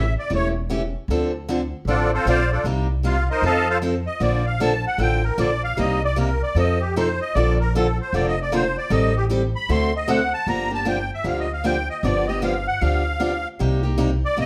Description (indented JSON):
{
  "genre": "acoustic string swing (jazz manouche)",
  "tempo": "154 BPM",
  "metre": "4/4",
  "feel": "swing 62% on 8ths",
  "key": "Bb major, G minor from 10.5 s",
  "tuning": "A4 = 440 Hz",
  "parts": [
    { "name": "musette accordion", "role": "melody", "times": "0.0-14.5 s", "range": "C4 to C6", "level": "-26 LUFS", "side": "equal", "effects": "plate reverb" },
    { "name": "picked steel-string acoustic guitar", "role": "accompaniment", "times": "0.0-14.5 s", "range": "C3 to A4", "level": "-26 LUFS", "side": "equal", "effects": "none" },
    { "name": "upright bass", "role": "bass", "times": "0.0-14.5 s", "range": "E1 to F2", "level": "-26 LUFS", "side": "equal", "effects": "none" }
  ],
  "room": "moderate studio reverb, RT60 0.8 s",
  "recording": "none",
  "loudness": "-22 LUFS",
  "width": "mono",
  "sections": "0.0-10.5 A section; 10.5-14.5 A section",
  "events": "accordion solo 0.0-14.5",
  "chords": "0.0 A7; 1.1 Dm7; 2.7 Cm7; 3.4 F7; 4.2 Bbmaj7; 5.8 Cm7; 6.6 F7; 7.3 Bbmaj7; 8.9 Am7b5; 9.7 D7; 10.5 Gm7; 12.0 G7; 13.6 Cm7"
}